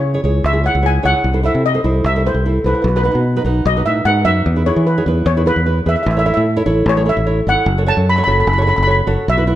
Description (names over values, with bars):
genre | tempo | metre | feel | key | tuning
calypso | 149 BPM | 4/4 | straight | unclear | A4 = 440 Hz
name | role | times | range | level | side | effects
steel pan | melody | 0.0-9.6 s | B4 to B5 | -18 LUFS | equal | none
nylon-string guitar | accompaniment | 0.0-9.6 s | D#4 to C#5 | -20 LUFS | right 2 dB | none
fingered electric bass | bass | 0.0-9.5 s | F#1 to E3 | -16 LUFS | equal | none
room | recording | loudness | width
moderate recital hall reverb, RT60 1.6 s | none | -13 LUFS | side -13 dB against mid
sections
0.0-9.6 A section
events
steel pan solo 0.0-9.6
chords
0.0 C#m; 1.2 Am/C; 2.9 B; 4.5 E; 6.1 A; 7.7 F#m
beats
0.04 0.44 0.84 | 1.24 1.65 2.05 2.45 | 2.85 3.25 3.66 4.06 | 4.46 4.86 5.26 5.67 | 6.07 6.47 6.87 7.27 | 7.67 8.08 8.48 8.88 | 9.28